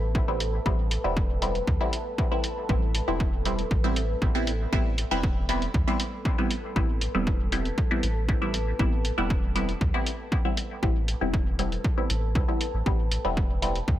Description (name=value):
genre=dub techno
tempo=118 BPM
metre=4/4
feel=straight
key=A minor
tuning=A4 = 440 Hz
part: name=deep dark ambient pad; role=sustained chords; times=0.0-14.0 s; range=A4 to A5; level=-36 LUFS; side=equal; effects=chorus, built-in reverb, sidechain pumping
part: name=soft dub sub bass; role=bass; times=0.0-14.0 s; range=E1 to D2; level=-29 LUFS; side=equal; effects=sidechain pumping
part: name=electronic kick drum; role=drums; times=0.1-14.0 s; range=none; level=-27 LUFS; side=equal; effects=overdrive
part: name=filtered dub chord stab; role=stabs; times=0.3-13.8 s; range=G3 to E4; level=-30 LUFS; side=equal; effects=phaser, sidechain pumping, dub echo
part: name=electronic hi-hat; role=drums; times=0.4-13.9 s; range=none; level=-32 LUFS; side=equal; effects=none
room=light reverb, digital ambience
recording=none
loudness=-24 LUFS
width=side -13 dB against mid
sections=0.0-14.0 A section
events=none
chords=0.0 Am9